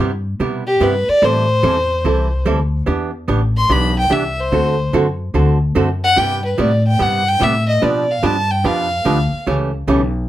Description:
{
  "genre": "country, western swing",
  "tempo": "145 BPM",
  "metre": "4/4",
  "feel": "swing 66% on 8ths",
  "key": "unclear",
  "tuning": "A4 = 439 Hz",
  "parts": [
    { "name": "archtop guitar, miked and amplified", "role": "accompaniment", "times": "0.0-10.0 s", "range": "B2 to B4", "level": "-18 LUFS", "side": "right 3 dB", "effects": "none" },
    { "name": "upright bass", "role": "bass", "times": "0.0-10.3 s", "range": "A1 to B2", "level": "-19 LUFS", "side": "left 1 dB", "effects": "none" },
    { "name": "dark fiddle", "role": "melody", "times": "0.7-9.5 s", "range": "G4 to C6", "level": "-17 LUFS", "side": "left 1 dB", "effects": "none" }
  ],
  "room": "light reverb",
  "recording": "none",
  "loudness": "-14 LUFS",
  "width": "side -13 dB against mid",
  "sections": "0.0-10.3 A section",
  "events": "fiddle solo 0.0-10.3",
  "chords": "0.0 Cmaj7; 1.2 Am7; 2.9 Em7; 4.5 D7; 6.2 Cmaj7; 7.8 G7; 9.5 A7"
}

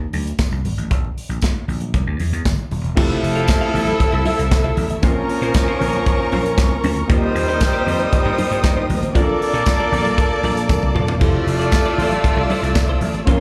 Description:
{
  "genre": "disco",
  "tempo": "117 BPM",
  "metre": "4/4",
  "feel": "straight",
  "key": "F major",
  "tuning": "A4 = 440 Hz",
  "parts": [
    { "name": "vintage slap bass", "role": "bass", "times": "0.0-13.4 s", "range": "Eb1 to Bb2", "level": "-24 LUFS", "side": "equal", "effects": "none" },
    { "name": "modern studio drum kit", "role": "drums", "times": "0.1-13.4 s", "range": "crash cymbal, hi-hat, kick drum, snare drum, toms", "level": "-22 LUFS", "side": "equal", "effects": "none" },
    { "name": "congas", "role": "percussion", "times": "0.1-13.4 s", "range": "none", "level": "-32 LUFS", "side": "equal", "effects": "none" },
    { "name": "tambourine", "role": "percussion", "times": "0.4-12.9 s", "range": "none", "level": "-38 LUFS", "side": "equal", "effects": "none" },
    { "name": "dark symphonic violin section", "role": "second line", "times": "3.0-13.4 s", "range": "G3 to D5", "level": "-27 LUFS", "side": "equal", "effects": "plate reverb" },
    { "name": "clean electric guitar", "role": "accompaniment", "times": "3.0-13.4 s", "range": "Db4 to F5", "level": "-30 LUFS", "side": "equal", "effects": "analog chorus, plate reverb, slapback echo" },
    { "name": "tine electric piano", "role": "accompaniment", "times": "3.0-13.4 s", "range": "A3 to Bb4", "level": "-29 LUFS", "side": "equal", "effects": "overdrive, plate reverb, slapback echo" },
    { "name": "clear symphonic string section", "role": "sustained chords", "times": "3.0-13.4 s", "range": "Bb3 to E6", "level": "-30 LUFS", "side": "equal", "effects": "plate reverb" },
    { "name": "warm horn section", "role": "stabs", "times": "3.0-13.4 s", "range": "F3 to C6", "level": "-25 LUFS", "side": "equal", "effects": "plate reverb, slapback echo" }
  ],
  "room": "light reverb",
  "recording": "live gig heard through the venue's PA, club reverb",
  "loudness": "-18 LUFS",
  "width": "mono",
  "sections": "0.0-3.0 A section; 3.0-13.4 B section",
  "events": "drum fill 10.7-11.2",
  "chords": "0.0 Ab; 0.9 N.C.; 1.9 C; 3.0 Fmaj7; 5.0 Bbmadd9; 7.1 Eb6; 9.2 Bbmaj7; 11.2 Fmaj7"
}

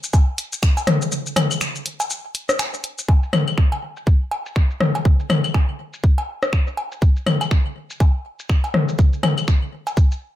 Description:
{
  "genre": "techno",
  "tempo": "122 BPM",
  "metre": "4/4",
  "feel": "swing 59% on 16ths",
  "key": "none",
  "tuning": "none",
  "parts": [
    { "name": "punchy analog drum machine", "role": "drums", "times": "0.0-10.2 s", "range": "finger snaps, hi-hat, shaker", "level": "-27 LUFS", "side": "left 1 dB", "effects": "low-pass filter on hats, low-pass filter on perc, low-pass filter on snare, low-pass filter on room" },
    { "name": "electronic kick drum", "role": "drums", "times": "0.1-10.1 s", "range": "none", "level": "-15 LUFS", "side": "equal", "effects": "none" },
    { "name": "organic electronic drum kit", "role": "percussion", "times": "0.1-9.9 s", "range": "claves, cowbell, rim click, toms", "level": "-21 LUFS", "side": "left 2 dB", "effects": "digital delay" }
  ],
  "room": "little or no reverb",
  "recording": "none",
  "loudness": "-17 LUFS",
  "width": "side -13 dB against mid",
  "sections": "0.0-3.1 A section; 3.1-10.4 B section",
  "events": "break 1.1-3.1",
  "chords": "none"
}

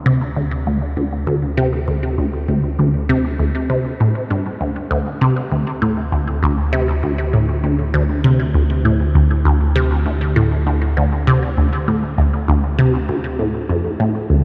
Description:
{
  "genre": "ambient, sequencer-driven space music",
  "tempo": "99 BPM",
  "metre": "4/4",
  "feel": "straight",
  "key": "unclear",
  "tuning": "A4 = 440 Hz",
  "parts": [
    { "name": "fat analog bass", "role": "bass", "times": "0.0-14.3 s", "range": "D2", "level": "-23 LUFS", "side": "equal", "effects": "none" },
    { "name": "resonant blip pluck", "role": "riff", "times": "0.1-14.4 s", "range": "D2 to C3", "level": "-19 LUFS", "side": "equal", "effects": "phaser, tape echo" }
  ],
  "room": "moderate huge ambient reverb, RT60 7.8 s",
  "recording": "dark, warm production",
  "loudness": "-18 LUFS",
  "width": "mono",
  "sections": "0.0-14.3 A section",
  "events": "none",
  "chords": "0.0 D5"
}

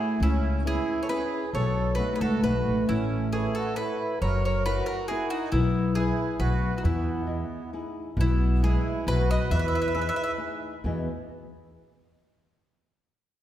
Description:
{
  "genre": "italian folk, Italian serenade",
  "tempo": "135 BPM",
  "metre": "3/4",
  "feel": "swing 54% on 8ths, rubato",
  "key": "E major",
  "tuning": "A4 = 440 Hz",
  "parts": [
    { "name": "bowl-back mandolin", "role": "melody", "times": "0.0-10.3 s", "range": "E4 to E5", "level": "-31 LUFS", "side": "left 1 dB", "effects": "none" },
    { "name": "accordion", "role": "second line", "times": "0.0-10.4 s", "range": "B3 to B4", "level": "-33 LUFS", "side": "right 4 dB", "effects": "light tremolo tuning" },
    { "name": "flamenco guitar", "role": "accompaniment", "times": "0.0-11.1 s", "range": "E2 to D#5", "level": "-31 LUFS", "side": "left 1 dB", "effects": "none" },
    { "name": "upright bass", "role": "bass", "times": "0.2-11.1 s", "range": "F#1 to E2", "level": "-26 LUFS", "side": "equal", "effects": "none" }
  ],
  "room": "wet concert hall reverb, RT60 1.8 s",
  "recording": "heard from further back in the room",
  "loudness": "-24 LUFS",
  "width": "side -12 dB against mid",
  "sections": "0.0-8.2 A section; 8.2-10.8 B section; 10.8-12.2 C section",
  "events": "none",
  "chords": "0.2 C#m7; 1.5 B7; 2.9 Aadd9; 4.2 F#7; 5.5 E/B; 6.4 B5; 6.8 Emaj7; 8.2 E/B; 9.1 B; 9.5 Emaj7"
}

